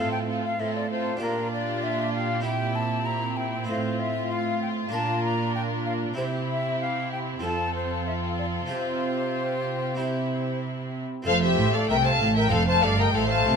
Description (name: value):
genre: classical, baroque-style concerto movement with solo episodes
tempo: 96 BPM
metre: 4/4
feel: straight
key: F major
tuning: A4 = 437 Hz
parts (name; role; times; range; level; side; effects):
- silver concert flute; melody; 0.0-13.6 s; G4 to Bb5; -30 LUFS; left 2 dB; none
- warm studio violin section; melody; 0.0-13.6 s; F4 to A5; -30 LUFS; left 5 dB; none
- warm studio violin section; second line; 0.0-13.6 s; E4 to F5; -32 LUFS; left 3 dB; none
- harpsichord; accompaniment; 0.0-13.6 s; F2 to Bb4; -35 LUFS; right 2 dB; none
- rich chamber viola section; accompaniment; 0.0-13.6 s; A3 to D4; -34 LUFS; right 2 dB; none
- rich chamber cello section; bass; 0.0-13.6 s; F2 to C3; -30 LUFS; right 4 dB; none
- rich chamber double bass section; bass; 11.3-13.6 s; F1 to C2; -28 LUFS; right 4 dB; none
room: light reverb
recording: close, detailed microphones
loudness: -23 LUFS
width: side -6 dB against mid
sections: 0.0-11.3 A section; 11.3-13.6 B section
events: none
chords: 0.0 F/A; 1.2 Gm7/Bb; 2.4 C7/Bb; 3.7 F/A; 4.9 Bb; 6.2 C; 7.4 F; 8.7 Csus4; 10.0 C; 11.3 F; 12.5 F7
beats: 0.59 | 1.21 1.83 2.44 3.06 | 3.68 4.30 4.93 5.55 | 6.18 6.80 7.43 8.06 | 8.71 9.35 10.00 10.63 | 11.27 11.90 12.52 13.15